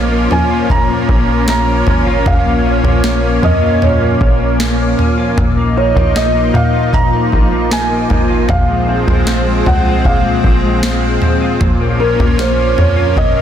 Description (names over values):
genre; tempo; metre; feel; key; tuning
dream pop; 77 BPM; 4/4; straight; Bb minor; A4 = 444 Hz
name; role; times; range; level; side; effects
felt-muted upright piano; melody; 0.0-13.4 s; Bb4 to Bb5; -18 LUFS; right 2 dB; tape echo
lush unison pad; sustained chords; 0.0-13.4 s; F3 to Eb4; -18 LUFS; right 2 dB; chorus
mellow electric guitar; arpeggios; 0.0-13.4 s; Bb2 to F4; -17 LUFS; left 4 dB; ensemble chorus, tape echo
plucky analog bass; bass; 0.0-13.4 s; Ab1 to Bb2; -16 LUFS; equal; none
booming analog drum machine; drums; 0.3-13.4 s; kick drum, snare drum, toms; -17 LUFS; equal; overdrive
room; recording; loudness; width
moderate huge ambient reverb, RT60 4.5 s; dense, heavily limited modern master; -10 LUFS; side -9 dB against mid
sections
0.0-13.4 A section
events
none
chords
0.0 Bbm; 5.4 Ebsus2/Bb; 8.5 Fm/Bb; 11.6 Bbm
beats
0.70 1.48 | 2.26 3.04 3.81 4.59 | 5.37 6.15 6.93 7.71 | 8.49 9.27 10.05 10.83 | 11.61 12.39 13.17